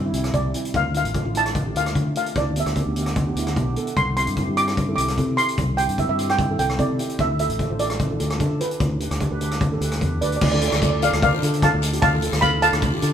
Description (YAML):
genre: calypso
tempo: 149 BPM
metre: 4/4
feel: straight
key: unclear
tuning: A4 = 440 Hz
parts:
  - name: steel pan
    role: accompaniment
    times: 0.0-13.1 s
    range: G3 to D5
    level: -28 LUFS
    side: right 2 dB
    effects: none
  - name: fingered electric bass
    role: bass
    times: 0.0-13.1 s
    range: A1 to D3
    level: -25 LUFS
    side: left 1 dB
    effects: none
  - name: street-band drum kit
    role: drums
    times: 0.1-13.1 s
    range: crash cymbal, hi-hat, kick drum, rim click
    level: -24 LUFS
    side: left 1 dB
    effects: none
  - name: steel pan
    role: melody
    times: 0.3-13.1 s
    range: B4 to D6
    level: -23 LUFS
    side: right 1 dB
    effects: digital delay
  - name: guiro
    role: percussion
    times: 10.4-13.1 s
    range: none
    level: -33 LUFS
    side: left 6 dB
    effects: none
room: moderate stone room reverb, RT60 1.2 s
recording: band playing live in one room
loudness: -19 LUFS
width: side -9 dB against mid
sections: 0.0-10.4 A section; 10.4-13.1 B section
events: none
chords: 0.0 Cadd9; 0.7 Dm; 2.4 Gadd9/D; 4.0 Cadd9; 7.2 Dm; 8.8 G/D; 10.4 Dm